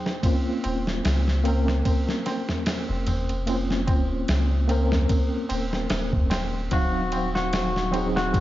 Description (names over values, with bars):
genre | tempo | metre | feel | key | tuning
trip hop | 74 BPM | 4/4 | swing 56% on 16ths | unclear | A4 = 436 Hz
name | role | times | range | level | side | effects
tine electric piano | accompaniment | 0.0-8.4 s | Gb3 to F5 | -28 LUFS | equal | overdrive, fast stereo tremolo, tape echo
dusty soul sampler-style drum kit | drums | 0.1-8.4 s | kick drum, ride cymbal, snare drum | -26 LUFS | equal | none
tabla | percussion | 0.1-8.4 s | none | -33 LUFS | right 1 dB | none
soft dub sub bass | bass | 0.7-8.4 s | Eb1 to Db2 | -26 LUFS | equal | none
clean electric guitar | melody | 6.7-8.4 s | Gb4 | -26 LUFS | left 2 dB | none
room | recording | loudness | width
digital ambience | vinyl crackle, nothing above 7.5 kHz | -22 LUFS | side -14 dB against mid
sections
0.0-8.4 A section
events
none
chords
0.2 Bbmadd9/Eb; 6.7 Ebm69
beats
| 0.23 1.04 1.85 2.66 | 3.48 4.29 5.10 5.91 | 6.72 7.53 8.34